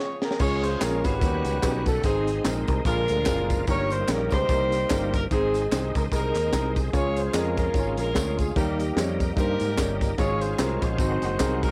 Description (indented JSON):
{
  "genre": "uptempo gospel",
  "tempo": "148 BPM",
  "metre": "4/4",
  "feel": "swing 57% on 8ths",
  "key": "Db major",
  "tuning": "A4 = 439 Hz",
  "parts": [
    { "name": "mellow horn section", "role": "melody", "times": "0.0-11.7 s", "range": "Bb3 to Db5", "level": "-30 LUFS", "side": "equal", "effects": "cassette tape" },
    { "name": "crisp fusion drum kit", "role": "drums", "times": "0.2-11.7 s", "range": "crash cymbal, hi-hat, kick drum, snare drum", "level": "-30 LUFS", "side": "equal", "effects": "cassette tape" },
    { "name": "clear concert grand piano", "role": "accompaniment", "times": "0.4-11.6 s", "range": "G2 to Eb5", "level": "-33 LUFS", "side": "equal", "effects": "cassette tape" },
    { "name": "bright tonewheel organ", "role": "sustained chords", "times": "0.4-11.7 s", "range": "D3 to F#5", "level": "-35 LUFS", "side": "equal", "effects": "slow rotary speaker, overdrive, chorus vibrato, cassette tape" },
    { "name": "fingered electric bass", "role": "bass", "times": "0.4-11.7 s", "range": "Gb1 to Ab2", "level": "-31 LUFS", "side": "equal", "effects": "none" },
    { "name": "tambourine and handclaps", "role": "percussion", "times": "0.4-11.7 s", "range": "none", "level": "-41 LUFS", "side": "equal", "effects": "none" }
  ],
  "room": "light reverb",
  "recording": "home recording on cassette",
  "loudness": "-25 LUFS",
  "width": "mono",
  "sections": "0.4-11.7 A section",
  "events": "drum fill 0.0-0.4; stop 0.0-0.4",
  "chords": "0.4 Db; 1.2 Eb7alt; 2.0 Ab; 2.9 Bb7; 3.7 Eb/G; 5.3 Ab; 6.9 Db; 8.6 Eb; 10.2 Db/Ab; 11.0 Ab7"
}